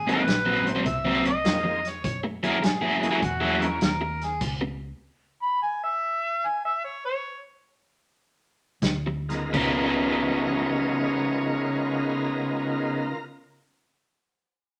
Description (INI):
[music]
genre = electric blues shuffle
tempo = 82-102 BPM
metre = 4/4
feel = swing 67% on 8ths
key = Db mixolydian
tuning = A4 = 440 Hz
[part]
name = mellow harmonica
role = melody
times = 0.0-13.1 s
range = Gb4 to Cb6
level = -31 LUFS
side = equal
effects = overdrive
[part]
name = vintage muted fingered electric bass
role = bass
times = 0.0-4.9, 8.8-13.1 s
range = Ab1 to Ab2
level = -37 LUFS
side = equal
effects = none
[part]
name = bright tonewheel organ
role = accompaniment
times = 0.1-3.8, 9.3-13.2 s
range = Db3 to Bb4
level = -32 LUFS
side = equal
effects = slow rotary speaker, overdrive, chorus vibrato
[part]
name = crunchy overdriven guitar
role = riff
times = 0.1-4.7, 9.1-13.2 s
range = Ab2 to Bb4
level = -28 LUFS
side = equal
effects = harmonic tremolo
[part]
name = natural country drum kit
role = drums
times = 0.1-4.6, 8.8-9.8 s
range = crash cymbal, hi-hat, kick drum, snare drum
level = -30 LUFS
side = equal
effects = none
[sound]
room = wet studio reverb, RT60 0.8 s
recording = none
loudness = -26 LUFS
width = mono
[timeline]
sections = 0.0-9.5 A section; 9.5-12.5 B section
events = slowing down 4.4-9.5; stop 4.4-8.8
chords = 0.0 Ab9; 2.0 Gb9; 4.4 N.C.; 9.5 Db13